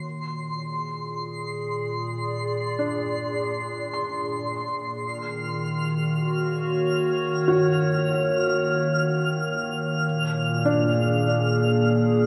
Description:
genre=ambient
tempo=free time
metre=none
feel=none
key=Eb dorian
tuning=A4 = 438 Hz
part: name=warbly tape-like pad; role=sustained chords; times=0.0-12.3 s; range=Bb2 to D5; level=-26 LUFS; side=equal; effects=chorus, built-in reverb
part: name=felt-muted upright piano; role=arpeggios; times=0.0-12.3 s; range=D4 to C6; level=-31 LUFS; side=equal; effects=diffuse ambient delay
part: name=twinkling granular texture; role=texture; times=0.0-12.3 s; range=C6 to F6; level=-33 LUFS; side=equal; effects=built-in reverb
room=wet huge ambient reverb, RT60 8.5 s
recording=cassette tape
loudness=-25 LUFS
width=mono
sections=0.0-12.3 A section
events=fade-in on ambient pad 0.0-12.3; fade-in on felt piano 0.0-12.3; fade-in on synth texture 0.0-12.3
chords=0.0 Bb7; 5.0 Ebm7; 10.0 Bb7

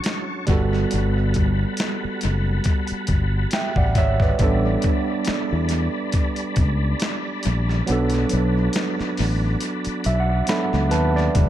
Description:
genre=R&B, neo-soul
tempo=69 BPM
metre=4/4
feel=swing 54% on 16ths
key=B minor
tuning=A4 = 440 Hz
part: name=overdriven tine electric piano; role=accompaniment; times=0.0-11.5 s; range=C#3 to B5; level=-24 LUFS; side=right 3 dB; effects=tape echo
part: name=tonewheel organ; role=sustained chords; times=0.0-11.3 s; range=G3 to C#6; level=-31 LUFS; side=left 2 dB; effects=fast rotary speaker, chorus vibrato
part: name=dusty soul sampler-style drum kit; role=drums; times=0.0-11.5 s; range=hi-hat, kick drum, snare drum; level=-24 LUFS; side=left 1 dB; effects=tape echo
part: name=fretless electric bass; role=bass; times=0.5-11.5 s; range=E1 to E2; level=-21 LUFS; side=left 1 dB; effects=none
room=digital ambience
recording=echo-heavy mix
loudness=-19 LUFS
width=side -12 dB against mid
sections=0.0-11.4 A section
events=kick muted 7.9-11.4; tine electric piano fill 9.6-11.4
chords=0.5 Gmaj9; 4.4 A9sus4; 7.9 Bm7

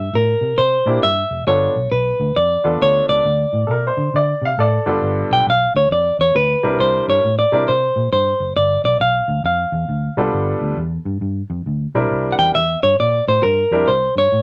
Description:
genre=blues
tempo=135 BPM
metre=4/4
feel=swing 63% on 8ths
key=G mixolydian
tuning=A4 = 440 Hz
part: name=clean electric guitar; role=melody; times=0.0-14.4 s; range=Bb4 to G5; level=-18 LUFS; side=equal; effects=none
part: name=vintage muted fingered electric bass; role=bass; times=0.0-14.4 s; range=F1 to D3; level=-24 LUFS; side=equal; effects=none
part: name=clear baby grand piano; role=accompaniment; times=0.9-13.9 s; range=G2 to Bb4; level=-23 LUFS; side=equal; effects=none
part: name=clear upright piano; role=second line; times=3.7-4.9 s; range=A4 to F5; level=-21 LUFS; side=equal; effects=none
room=moderate studio reverb, RT60 0.5 s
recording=none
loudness=-17 LUFS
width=mono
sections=0.0-5.0 A section; 5.0-14.4 A section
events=none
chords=0.0 C7; 1.5 G7 (rootless); 3.2 D5; 5.0 G7; 6.8 C7; 8.6 G7; 12.1 C7

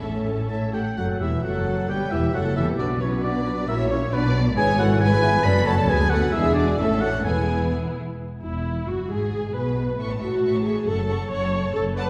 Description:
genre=quick classical-period movement for symphony orchestra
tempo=134 BPM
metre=2/4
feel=rubato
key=unclear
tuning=A4 = 440 Hz
part: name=warm symphonic violin section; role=melody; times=0.0-12.1 s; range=E4 to C#6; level=-37 LUFS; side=equal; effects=none
part: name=dark clarinet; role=second line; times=0.0-7.7 s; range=B3 to B4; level=-33 LUFS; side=equal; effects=none
part: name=rich chamber violin section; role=second line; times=0.0-12.1 s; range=E4 to B5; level=-36 LUFS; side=equal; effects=none
part: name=warm chamber viola section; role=accompaniment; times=0.0-12.1 s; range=E3 to C#5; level=-31 LUFS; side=equal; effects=none
part: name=dark chamber double bass section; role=bass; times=0.0-12.1 s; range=E1 to D2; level=-29 LUFS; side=equal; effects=none
part: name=warm chamber cello section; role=bass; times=0.0-12.1 s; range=D2 to B2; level=-29 LUFS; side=equal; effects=none
part: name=mellow concert flute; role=second line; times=0.5-7.7 s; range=D4 to D5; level=-32 LUFS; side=equal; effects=none
part: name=warm oboe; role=second line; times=0.5-7.7 s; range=B4 to B5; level=-30 LUFS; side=equal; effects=none
part: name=warm French horn section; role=sustained chords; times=1.0-8.0 s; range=E3 to B4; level=-34 LUFS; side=equal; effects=none
room=wet scoring stage reverb, RT60 1.7 s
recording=heard from further back in the room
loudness=-23 LUFS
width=mono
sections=1.0-8.2 A section; 8.2-12.1 B section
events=none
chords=0.0 A; 1.0 Esus24; 1.9 Em6; 2.3 Esus24; 2.8 Bm; 3.7 F#7/A#; 4.1 Bm; 4.6 E/G#; 5.4 F#m; 5.9 Bm/D; 6.3 E7; 6.8 A; 7.2 E; 8.2 Esus2; 9.1 G#m; 10.0 A; 10.9 F#m

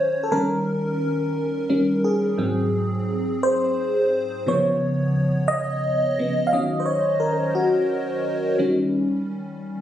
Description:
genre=R&B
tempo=58 BPM (dotted quarters)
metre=6/8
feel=straight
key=Eb minor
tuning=A4 = 440 Hz
part: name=FM electric piano with soft pad layer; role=solo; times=0.0-9.8 s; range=Ab2 to F5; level=-20 LUFS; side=equal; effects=chorus, phaser
room=moderate echo chamber reverb, RT60 1.3 s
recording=recorded on a phone in the room, club reverb, compression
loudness=-20 LUFS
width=side -11 dB against mid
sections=0.0-6.5 A section; 6.5-9.8 B section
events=FM electric piano solo 0.0-6.5, 6.5-9.8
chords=0.3 Eb7; 2.4 Ab7; 4.4 Db9; 6.5 Ebm7; 8.6 Eb7

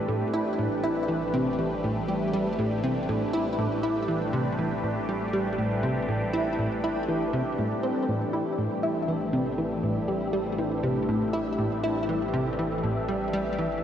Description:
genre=ambient, sequencer-driven space music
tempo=120 BPM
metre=4/4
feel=straight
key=A minor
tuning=A4 = 440 Hz
part: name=phased analog pad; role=sustained chords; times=0.0-13.8 s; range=E3 to B4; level=-30 LUFS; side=right 1 dB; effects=phaser, chorus, cassette tape, shimmer reverb
part: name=Celtic harp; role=arpeggios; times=0.0-13.8 s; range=G3 to C5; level=-36 LUFS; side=left 3 dB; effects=auto-pan, cassette tape, ping-pong delay, shimmer reverb
part: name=analog drone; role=bass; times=0.8-13.8 s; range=A1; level=-40 LUFS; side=equal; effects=chorus
part: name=wind-like tuned noise texture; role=texture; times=9.4-13.8 s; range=C4 to E5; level=-44 LUFS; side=right 1 dB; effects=none
part: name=plucky analog bass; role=riff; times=0.1-13.7 s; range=A2 to E4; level=-28 LUFS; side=equal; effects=analog chorus, cassette tape, ping-pong delay, shimmer reverb
room=wet lush hall reverb, RT60 2.7 s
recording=home recording on cassette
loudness=-25 LUFS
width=side -9 dB against mid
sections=0.0-13.8 A section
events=none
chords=0.0 Am7

